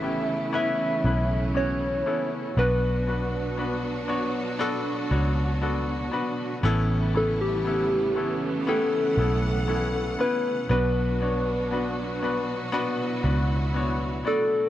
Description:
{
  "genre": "pop",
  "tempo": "59 BPM",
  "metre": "4/4",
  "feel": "straight",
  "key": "B minor",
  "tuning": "A4 = 436 Hz",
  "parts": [
    { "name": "soft struck synth lead", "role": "melody", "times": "0.0-14.7 s", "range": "G4 to E5", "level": "-27 LUFS", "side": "equal", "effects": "chorus" },
    { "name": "bright grand piano", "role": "accompaniment", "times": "0.0-14.7 s", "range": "A2 to D5", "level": "-29 LUFS", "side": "left 3 dB", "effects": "none" },
    { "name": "rich symphonic string section", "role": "sustained chords", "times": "0.0-14.7 s", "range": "B2 to F#5", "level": "-31 LUFS", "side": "right 3 dB", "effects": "none" },
    { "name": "vintage muted fingered electric bass", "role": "bass", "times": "0.0-14.2 s", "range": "A1 to C#2", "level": "-26 LUFS", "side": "equal", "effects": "none" }
  ],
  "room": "light reverb",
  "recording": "dry, close 1970s-style studio recording",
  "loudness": "-23 LUFS",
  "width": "side -13 dB against mid",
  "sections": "0.0-14.7 A section",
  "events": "none",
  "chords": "0.0 Aadd9; 2.6 Bm; 6.6 Aadd9; 10.7 Bm",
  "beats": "0.53 1.55 | 2.57 3.58 4.60 5.62 | 6.63 7.65 8.67 9.68 | 10.70 11.72 12.73 13.75"
}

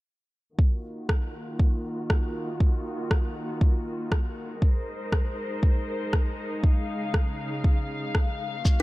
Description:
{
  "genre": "afro house",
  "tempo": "119 BPM",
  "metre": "4/4",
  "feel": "swing 59% on 16ths",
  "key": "Eb dorian",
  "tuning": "A4 = 439 Hz",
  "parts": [
    { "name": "dark studio string section", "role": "sustained chords", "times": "0.6-8.8 s", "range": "Db3 to F5", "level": "-32 LUFS", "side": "left 1 dB", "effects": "sidechain pumping, low-pass filter" },
    { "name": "electronic kick drum", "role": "drums", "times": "0.6-8.8 s", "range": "none", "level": "-22 LUFS", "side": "equal", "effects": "none" },
    { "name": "electronic rim click", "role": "drums", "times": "1.1-8.3 s", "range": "none", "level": "-33 LUFS", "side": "equal", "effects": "none" },
    { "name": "shekere", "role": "percussion", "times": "8.7-8.8 s", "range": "none", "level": "-34 LUFS", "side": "left 3 dB", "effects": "none" }
  ],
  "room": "small room ambience",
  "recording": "dark, warm production",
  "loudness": "-24 LUFS",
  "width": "side -19 dB against mid",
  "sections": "0.6-8.8 A section",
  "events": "filter sweep on string section 0.6-8.8",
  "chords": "0.6 Ebmadd9; 4.6 Ab; 6.6 Dbadd9",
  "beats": "| 0.59 1.09 1.59 2.10 | 2.60 3.11 3.61 4.12 | 4.62 5.12 5.63 6.13 | 6.64 7.14 7.64 8.15 | 8.65"
}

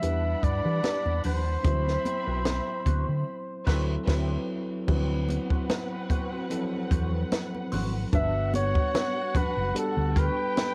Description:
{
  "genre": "lush 1970s-style soul",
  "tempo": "74 BPM",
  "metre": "4/4",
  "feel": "swing 54% on 16ths",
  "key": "unclear",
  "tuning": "A4 = 441 Hz",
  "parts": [
    { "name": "warm flugelhorn", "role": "melody", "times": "0.0-10.7 s", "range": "A4 to E5", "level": "-32 LUFS", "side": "equal", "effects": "cassette tape" },
    { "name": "warm studio violin section", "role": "second line", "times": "0.0-10.7 s", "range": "C4 to B5", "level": "-40 LUFS", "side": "equal", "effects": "cassette tape" },
    { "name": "mellow tine electric piano", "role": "accompaniment", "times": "0.0-10.7 s", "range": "E3 to C5", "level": "-36 LUFS", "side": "equal", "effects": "cassette tape" },
    { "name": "mellow electric guitar", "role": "riff", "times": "0.0-10.4 s", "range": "C4 to B4", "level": "-42 LUFS", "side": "equal", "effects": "wah, cassette tape" },
    { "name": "fingered electric bass", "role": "bass", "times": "0.0-10.3 s", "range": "F#1 to E3", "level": "-31 LUFS", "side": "equal", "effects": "none" },
    { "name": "compact cocktail drum kit", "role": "drums", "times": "0.0-10.7 s", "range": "crash cymbal, hi-hat, kick drum, snare drum", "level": "-31 LUFS", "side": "equal", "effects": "cassette tape" },
    { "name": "congas", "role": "percussion", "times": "0.0-10.7 s", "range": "none", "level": "-40 LUFS", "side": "equal", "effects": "none" }
  ],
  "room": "light reverb, small room ambience",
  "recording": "home recording on cassette",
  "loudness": "-27 LUFS",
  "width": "mono",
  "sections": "0.0-4.9 A section; 4.9-8.1 B section; 8.1-10.7 C section",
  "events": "band accent 3.3-4.9",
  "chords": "0.0 Em7; 1.6 D13; 8.1 Gmaj7",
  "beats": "0.02 0.83 | 1.64 2.45 3.27 4.08 | 4.89 5.70 6.51 7.32 | 8.13 8.94 9.76 10.57"
}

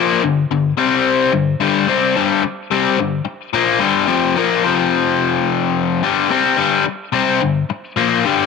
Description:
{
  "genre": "rock",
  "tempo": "108 BPM",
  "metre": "4/4",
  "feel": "straight",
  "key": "unclear",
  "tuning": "A4 = 440 Hz",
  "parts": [
    { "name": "biting overdriven guitar", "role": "solo", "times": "0.0-8.5 s", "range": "F2 to C4", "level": "-14 LUFS", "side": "left 6 dB", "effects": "none" }
  ],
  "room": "moderate spring reverb, RT60 1.7 s",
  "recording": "none",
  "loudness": "-14 LUFS",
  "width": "side -5 dB against mid",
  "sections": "0.0-8.5 A section",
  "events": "none",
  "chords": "0.0 G5; 0.8 C5; 1.3 G5; 4.6 F5; 6.0 G5",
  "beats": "0.49 1.04 | 1.60 2.15 2.70 3.26 | 3.81 4.36 4.92 5.47 | 6.02 6.58 7.13 7.69 | 8.24"
}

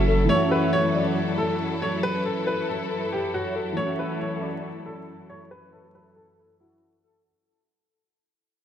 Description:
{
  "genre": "hip hop",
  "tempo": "138 BPM",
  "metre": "4/4",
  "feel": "half-time",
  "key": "F# minor",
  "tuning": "A4 = 443 Hz",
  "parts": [
    { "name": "clear upright piano", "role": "melody", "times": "0.0-7.2 s", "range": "E4 to E5", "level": "-28 LUFS", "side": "equal", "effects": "low-pass filter, tape echo" },
    { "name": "warm velvety synth lead", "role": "second line", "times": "0.0-7.2 s", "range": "F#4 to E5", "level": "-30 LUFS", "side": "equal", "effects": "chorus, tape echo" },
    { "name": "dark baby grand piano", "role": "accompaniment", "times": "0.0-7.3 s", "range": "E3 to F#4", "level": "-28 LUFS", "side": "left 1 dB", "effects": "ensemble chorus, low-pass filter" },
    { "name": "rich studio string section", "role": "sustained chords", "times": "0.0-7.2 s", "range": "F#2 to A4", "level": "-30 LUFS", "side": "left 1 dB", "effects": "low-pass filter" }
  ],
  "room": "wet plate reverb, RT60 3.2 s",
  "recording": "dreamy mix soaked in reverb, vinyl crackle",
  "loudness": "-22 LUFS",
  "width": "side -9 dB against mid",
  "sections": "0.3-7.2 A section",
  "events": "fade-out 0.3-7.2; filter sweep 0.3-7.2",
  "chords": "0.3 F#m7",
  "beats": "| 0.29 0.73 1.16 1.60 | 2.03 2.47 2.90 3.34 | 3.77 4.21 4.64 5.08 | 5.51 5.95 6.38 6.82"
}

